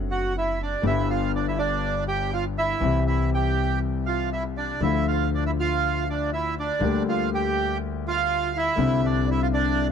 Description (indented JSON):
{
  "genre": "tango",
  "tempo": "121 BPM",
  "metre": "4/4",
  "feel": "rubato",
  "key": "unclear",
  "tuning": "A4 = 440 Hz",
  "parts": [
    { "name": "warm concert grand piano", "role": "accompaniment", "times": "0.0-9.9 s", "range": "G1 to G4", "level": "-27 LUFS", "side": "left 10 dB", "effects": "none" },
    { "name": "upright bass", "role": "bass", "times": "0.0-9.9 s", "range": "F#1 to D2", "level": "-28 LUFS", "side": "right 2 dB", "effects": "none" },
    { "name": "bandoneon", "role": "melody", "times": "0.1-9.9 s", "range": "D4 to G5", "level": "-26 LUFS", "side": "right 4 dB", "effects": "none" }
  ],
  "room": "small room ambience",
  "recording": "dry, close 1970s-style studio recording",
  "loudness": "-22 LUFS",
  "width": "side -7 dB against mid",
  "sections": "0.0-9.9 A section",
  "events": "none",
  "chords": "0.0 D7/F#; 0.8 G; 2.8 C; 4.8 Dm; 6.8 Gm/D; 8.8 Cadd9"
}